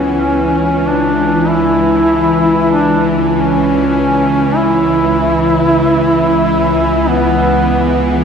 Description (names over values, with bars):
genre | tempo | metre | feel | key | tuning
dark ambient drone | free time | none | none | C# minor | A4 = 441 Hz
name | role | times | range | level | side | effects
warm duduk | melody | 0.0-8.1 s | B3 to E4 | -13 LUFS | equal | shimmer reverb, diffuse ambient delay
bowed-like drone | drone | 0.0-8.2 s | C#2 to E3 | -14 LUFS | equal | built-in reverb
room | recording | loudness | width
wet cathedral reverb, RT60 5.1 s | none | -10 LUFS | side -7 dB against mid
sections
0.0-8.2 A section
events
none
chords
0.0 C#m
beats
free time